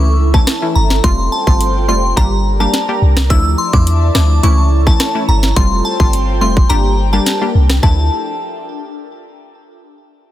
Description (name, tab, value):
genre	dancehall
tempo	106 BPM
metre	4/4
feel	straight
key	D minor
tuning	A4 = 441 Hz
part	glassy synth bell	melody	0.0-8.1 s	A5 to E6	-19 LUFS	left 1 dB	chorus, ping-pong delay
part	analog pluck	accompaniment	0.0-8.0 s	E3 to G4	-20 LUFS	left 2 dB	chorus
part	airy breathy pad	sustained chords	0.0-8.1 s	C#4 to Bb5	-23 LUFS	right 2 dB	chorus, phaser, sidechain pumping
part	clean 808-style bass	bass	0.0-8.1 s	F1 to E2	-13 LUFS	equal	none
part	island pop drum kit	drums	0.3-8.0 s	hi-hat, kick drum, rim click, snare drum	-14 LUFS	equal	none
room	digital ambience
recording	dense, heavily limited modern master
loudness	-10 LUFS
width	side -13 dB against mid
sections	0.0-7.8 A section; 7.8-10.1 B section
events	kick muted 6.7-7.8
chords	0.0 A/C#; 1.0 Fadd9; 2.2 Gm; 3.3 Dmadd9; 4.4 A/C#; 5.6 Fadd9; 6.7 Gm; 7.8 Dmadd9